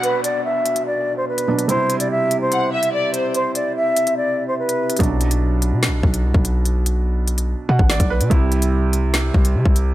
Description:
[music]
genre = hip hop, drill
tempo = 145 BPM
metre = 4/4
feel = half-time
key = B phrygian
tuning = A4 = 439 Hz
[part]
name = concert flute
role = melody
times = 0.0-5.0 s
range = B4 to E5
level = -20 LUFS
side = equal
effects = none
[part]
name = warm symphonic violin section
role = second line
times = 0.0, 2.5-3.3 s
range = C5 to F#5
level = -25 LUFS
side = left 2 dB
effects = tape echo
[part]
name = felt-muted upright piano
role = accompaniment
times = 0.0-9.9 s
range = B2 to F#5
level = -24 LUFS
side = right 4 dB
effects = none
[part]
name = glass harmonica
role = sustained chords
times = 0.0-5.0 s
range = B3 to E5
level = -27 LUFS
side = equal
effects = none
[part]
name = drill drum kit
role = drums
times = 0.0-9.9 s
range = hi-hat, kick drum, snare drum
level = -19 LUFS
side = equal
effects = none
[part]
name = downlifter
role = sound effects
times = 0.0-1.7 s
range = none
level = -35 LUFS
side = equal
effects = none
[part]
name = hard-hitting 808-style bass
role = bass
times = 5.0-9.9 s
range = A1 to C3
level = -18 LUFS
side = equal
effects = none
[sound]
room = studio ambience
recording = none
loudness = -16 LUFS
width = side -15 dB against mid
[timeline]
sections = 0.0-5.0 A section; 5.0-9.9 B section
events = kick muted 4.2-5.0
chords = 0.0 Bm; 1.7 C; 5.0 Bm; 8.3 C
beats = | 0.03 0.45 0.86 1.28 | 1.69 2.10 2.52 2.93 | 3.35 3.76 4.17 4.59 | 5.00 5.41 5.83 6.24 | 6.66 7.07 7.48 7.90 | 8.31 8.72 9.14 9.55

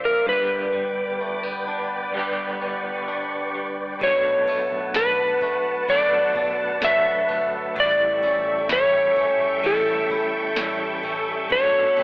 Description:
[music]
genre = dream pop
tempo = 64 BPM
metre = 4/4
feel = straight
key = unclear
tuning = A4 = 440 Hz
[part]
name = electric slide guitar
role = melody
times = 0.0-12.0 s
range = A4 to E5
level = -20 LUFS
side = equal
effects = analog delay
[part]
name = electric guitar at the edge of break-up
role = accompaniment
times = 0.0-12.0 s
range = G2 to A4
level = -32 LUFS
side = equal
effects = tremolo, wide subtle chorus
[part]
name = soft string machine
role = sustained chords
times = 0.0-12.0 s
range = Bb3 to D6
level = -27 LUFS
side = equal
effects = ensemble chorus
[part]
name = clean electric guitar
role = arpeggios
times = 0.0-12.0 s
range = G2 to F4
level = -32 LUFS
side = equal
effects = wide subtle chorus, analog delay
[part]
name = vintage muted picked electric bass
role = bass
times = 0.0-11.9 s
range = G1 to B2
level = -45 LUFS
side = equal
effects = tube saturation
[part]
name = booming analog drum machine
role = drums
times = 4.0-12.0 s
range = kick drum, ride cymbal, snare drum, tambourine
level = -33 LUFS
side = equal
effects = none
[sound]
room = light reverb, digital ambience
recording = dry, gritty hardware recording, telephone sound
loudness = -19 LUFS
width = side -23 dB against mid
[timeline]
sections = 0.0-4.0 A section; 4.0-12.0 B section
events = break 0.3-4.0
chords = 0.3 G; 4.0 Bm7; 7.8 A7; 11.5 Bm7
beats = | 0.26 1.20 2.13 3.07 | 4.01 4.95 5.88 6.82 | 7.76 8.70 9.63 10.57 | 11.51

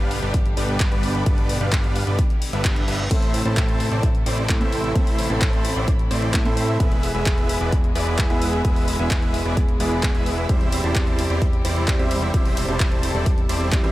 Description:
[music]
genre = EDM, festival progressive house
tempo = 130 BPM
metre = 4/4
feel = straight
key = A minor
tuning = A4 = 441 Hz
[part]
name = warm studio string section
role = sustained chords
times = 0.0-13.9 s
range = B2 to B5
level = -30 LUFS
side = left 1 dB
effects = sidechain pumping
[part]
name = big supersaw lead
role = riff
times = 0.0-13.9 s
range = G3 to A5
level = -27 LUFS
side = right 1 dB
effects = cassette tape, sidechain pumping, tape echo
[part]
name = fat analog bass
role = bass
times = 0.0-13.9 s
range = E1 to A2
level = -26 LUFS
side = equal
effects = sidechain pumping
[part]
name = house drum kit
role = drums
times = 0.1-13.9 s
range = crash cymbal, handclaps, hi-hat, ride cymbal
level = -29 LUFS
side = left 1 dB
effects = none
[part]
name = electronic kick drum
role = drums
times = 0.3-13.8 s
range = none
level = -20 LUFS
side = equal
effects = none
[part]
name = reverse cymbal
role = sound effects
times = 2.4-3.1 s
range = none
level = -35 LUFS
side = right 1 dB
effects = none
[part]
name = dark grand piano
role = accompaniment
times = 3.1-13.9 s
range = A2 to A4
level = -27 LUFS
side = right 2 dB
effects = sidechain pumping, tape echo
[sound]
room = little or no reverb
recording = none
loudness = -18 LUFS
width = side -16 dB against mid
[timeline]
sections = 0.0-13.9 A section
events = reverse cymbal 2.4-3.1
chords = 0.0 G; 3.1 Am; 6.8 E; 10.5 C/E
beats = 0.34 0.80 | 1.26 1.72 2.19 2.65 | 3.11 3.57 4.03 4.49 | 4.96 5.42 5.88 6.34 | 6.80 7.26 7.72 8.19 | 8.65 9.11 9.57 10.03 | 10.49 10.96 11.42 11.88 | 12.34 12.80 13.26 13.72

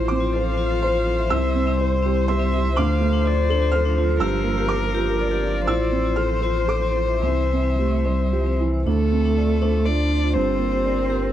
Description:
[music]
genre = neoclassical piano and strings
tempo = 108-126 BPM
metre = 3/4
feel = rubato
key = D minor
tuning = A4 = 440 Hz
[part]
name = muted violin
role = melody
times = 0.0-11.3 s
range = A4 to D5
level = -25 LUFS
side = left 7 dB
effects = none
[part]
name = muted cello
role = second line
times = 0.0-11.3 s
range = E3 to D4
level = -27 LUFS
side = right 6 dB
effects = none
[part]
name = felt-muted upright piano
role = accompaniment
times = 0.0-11.3 s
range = C2 to F6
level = -25 LUFS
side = right 6 dB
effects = none
[part]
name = muted viola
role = accompaniment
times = 0.0-11.3 s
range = F4 to F5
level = -32 LUFS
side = right 2 dB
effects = none
[part]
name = pure sine sub bass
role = bass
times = 0.0-11.3 s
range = G1 to D2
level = -23 LUFS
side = equal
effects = none
[part]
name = vibraphone with hard mallets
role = arpeggios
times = 0.2-11.3 s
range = C4 to F5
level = -30 LUFS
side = left 9 dB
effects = slapback echo
[sound]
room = light reverb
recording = dry, close 1970s-style studio recording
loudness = -18 LUFS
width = side -11 dB against mid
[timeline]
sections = 0.0-8.9 A section; 8.9-11.3 B section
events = none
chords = 0.0 F/A; 1.3 C; 2.8 Dm7; 4.2 Gm7; 5.7 Fmaj7/A; 7.2 C; 8.9 Dm7; 10.4 Gm7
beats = 0.34 0.83 | 1.31 1.80 2.29 | 2.77 3.25 3.73 | 4.21 4.70 5.19 | 5.68 6.17 6.69 | 7.23 7.78 8.31 | 8.86 9.36 9.86 | 10.36 10.86

